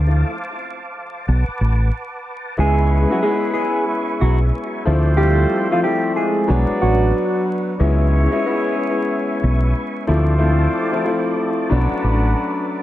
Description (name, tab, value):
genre	hip hop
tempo	92 BPM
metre	4/4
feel	swing 61% on 16ths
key	C# phrygian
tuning	A4 = 439 Hz
part	tonewheel organ	sustained chords	0.0-12.8 s	B4 to D6	-30 LUFS	right 1 dB	chorus vibrato, slow rotary speaker, high-pass filter, low-pass filter
part	fingered electric bass	bass	0.0-12.3 s	A1 to D2	-16 LUFS	equal	none
part	mellow electric guitar	melody	2.6-7.8 s	F3 to G#4	-20 LUFS	right 2 dB	phaser, high-pass filter, low-pass filter, analog delay
part	dark concert grand piano	accompaniment	2.6-12.8 s	F3 to C#5	-21 LUFS	left 2 dB	high-pass filter, low-pass filter, analog delay
part	dark horn section	stabs	2.6-12.7 s	B3 to D5	-26 LUFS	right 1 dB	high-pass filter, low-pass filter, analog delay
room	light reverb, studio ambience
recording	echo-heavy mix, vinyl crackle, nothing above 10.8 kHz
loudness	-16 LUFS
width	side -14 dB against mid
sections	0.0-12.8 A section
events	break 0.0-2.6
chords	0.0 Dm7; 1.3 Bm7; 2.6 C#m7; 4.9 Dm7; 6.5 Bm7; 7.8 C#m7; 10.1 Dm7; 11.7 Bm7